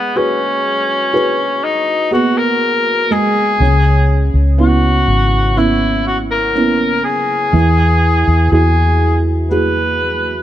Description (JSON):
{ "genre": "pop", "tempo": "61 BPM", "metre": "4/4", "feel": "straight", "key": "G# minor", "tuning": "A4 = 439 Hz", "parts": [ { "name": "warm cor anglais", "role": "melody", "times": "0.0-10.4 s", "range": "B3 to B4", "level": "-16 LUFS", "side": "left 2 dB", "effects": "none" }, { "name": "felt-muted upright piano", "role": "accompaniment", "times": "0.0-10.4 s", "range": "C#3 to B4", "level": "-17 LUFS", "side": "right 2 dB", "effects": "none" }, { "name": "vintage muted fingered electric bass", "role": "bass", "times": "3.6-10.4 s", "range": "G#1 to E2", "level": "-14 LUFS", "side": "equal", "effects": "none" } ], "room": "light reverb, studio ambience", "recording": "none", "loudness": "-11 LUFS", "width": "side -12 dB against mid", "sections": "0.0-10.4 A section", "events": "none", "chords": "0.0 G#m7; 3.6 C#m7; 7.5 Eadd9", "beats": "0.66 1.64 2.62 | 3.61 4.59 5.57 6.56 | 7.54 8.52 9.51" }